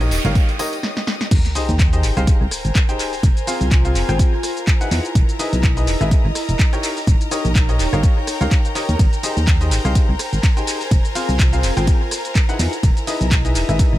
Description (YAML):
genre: piano house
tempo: 125 BPM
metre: 4/4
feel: swing 56% on 16ths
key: Ab major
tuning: A4 = 439 Hz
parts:
  - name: rich studio string section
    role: sustained chords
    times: 0.0-14.0 s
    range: Bb4 to Eb6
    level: -30 LUFS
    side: left 1 dB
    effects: sidechain pumping
  - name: bright upright piano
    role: riff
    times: 0.0-13.9 s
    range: C4 to G5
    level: -26 LUFS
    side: left 2 dB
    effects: sidechain pumping, tape echo
  - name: solid FM bass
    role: bass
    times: 0.0-14.0 s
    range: Eb1 to E2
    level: -19 LUFS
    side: equal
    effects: sidechain pumping
  - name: punchy analog drum machine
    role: drums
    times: 0.0-13.9 s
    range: crash cymbal, handclaps, hi-hat, ride cymbal, rim click, shaker, snare drum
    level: -25 LUFS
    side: equal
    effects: tape echo
  - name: tambourine and congas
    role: percussion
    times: 0.0-0.8 s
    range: none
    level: -30 LUFS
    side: right 1 dB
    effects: none
  - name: noise sweep and sub drop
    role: sound effects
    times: 0.0-3.2 s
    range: none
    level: -28 LUFS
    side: equal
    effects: none
  - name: airy breathy pad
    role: texture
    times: 0.0-14.0 s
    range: Eb4 to Ab5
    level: -28 LUFS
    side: equal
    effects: chorus, sidechain pumping
  - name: electronic kick drum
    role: drums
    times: 0.4-13.9 s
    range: none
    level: -15 LUFS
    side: equal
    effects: overdrive
room: little or no reverb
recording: echo-heavy mix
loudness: -15 LUFS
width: side -15 dB against mid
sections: 0.0-1.3 A section; 1.3-14.0 B section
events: noise sweep 0.0-1.3; break 0.8-1.3; drum fill 0.8-1.3; drop 1.3-14.0; impact 1.3-3.2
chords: 0.0 Eb7; 1.3 Abmaj7; 3.2 Fm; 4.9 Emaj7; 6.8 Eb7; 9.0 Abmaj7; 10.9 Fm; 12.6 Emaj7